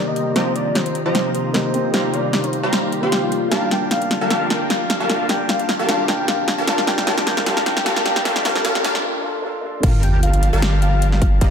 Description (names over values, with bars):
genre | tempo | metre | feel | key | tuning
future bass | 152 BPM | 4/4 | swing 54% on 16ths, half-time | G minor | A4 = 439 Hz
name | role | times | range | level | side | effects
soft octave-layered synth lead | melody | 0.0-11.5 s | F4 to G5 | -24 LUFS | left 1 dB | chorus, sidechain pumping, ping-pong delay
felt-muted upright piano | accompaniment | 0.0-9.9 s | Bb3 to A5 | -26 LUFS | equal | sidechain pumping, diffuse ambient delay
airy breathy pad | sustained chords | 0.0-11.5 s | C3 to F4 | -28 LUFS | left 1 dB | chorus, sidechain pumping
supersaw stab | riff | 0.0-11.5 s | F3 to C6 | -23 LUFS | equal | sidechain pumping, low-pass filter, diffuse ambient delay
saturated sub bass | bass | 0.0-11.5 s | F1 to G2 | -23 LUFS | equal | sidechain pumping, high-pass filter
big-room dance drum kit | drums | 0.2-11.5 s | crash cymbal, hi-hat, snare drum | -22 LUFS | equal | none
riser and sub drop | sound effects | 5.0-11.4 s | none | -30 LUFS | equal | none
electronic kick drum | drums | 9.8-11.5 s | none | -15 LUFS | equal | none
room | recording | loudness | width
wet plate reverb, RT60 1.9 s, digital ambience | dreamy mix soaked in reverb, high-pass filter | -16 LUFS | side -7 dB against mid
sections
0.0-9.8 A section; 9.8-11.5 B section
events
build-up 0.0-9.8; drum fill 0.0-9.0; filter sweep on supersaw synth 0.0-9.8; filter sweep 0.0-9.8; break 9.0-9.8; drop 9.8-11.5; impact 9.8-11.4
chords
0.4 F7sus4; 1.9 Eb6/G; 3.5 Gm7; 5.1 Cm9/G; 6.7 F7sus4; 8.3 Eb6/G; 9.8 Gm7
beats
| 0.36 0.76 1.15 1.54 | 1.94 2.33 2.73 3.12 | 3.52 3.91 4.31 4.70 | 5.10 5.49 5.89 6.28 | 6.68 7.07 7.47 7.86 | 8.26 8.65 9.04 9.44 | 9.83 10.23 10.62 11.02 | 11.41